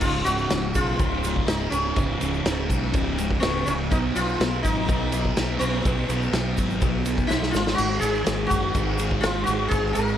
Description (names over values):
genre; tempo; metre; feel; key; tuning
psychedelic rock; 124 BPM; 4/4; straight; Db mixolydian; A4 = 439 Hz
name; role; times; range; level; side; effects
sitar; melody; 0.0-10.2 s; Cb4 to Bb4; -27 LUFS; left 1 dB; tape echo
thick fuzz guitar; riff; 0.0-10.2 s; Db2 to Cb4; -27 LUFS; left 1 dB; distortion, phaser
fuzz fingered electric bass; bass; 0.0-10.2 s; Db1 to Cb2; -28 LUFS; equal; overdrive
vintage drum kit; drums; 0.0-10.1 s; crash cymbal, kick drum, ride cymbal, snare drum; -26 LUFS; equal; none
tube shaker; percussion; 0.0-10.1 s; none; -42 LUFS; right 11 dB; none
string machine, violas; sustained chords; 7.8-10.2 s; Ab4 to F5; -37 LUFS; right 3 dB; none
room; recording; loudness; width
light reverb, small room reverb; none; -21 LUFS; side -10 dB against mid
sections
0.0-10.2 A section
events
drum fill 7.3-7.8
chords
0.0 Db; 3.9 Cb; 7.5 Ab6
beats
| 0.02 0.51 0.99 1.48 | 1.97 2.46 2.94 3.43 | 3.91 4.40 4.88 5.37 | 5.85 6.34 6.82 7.30 | 7.79 8.27 8.76 9.24 | 9.72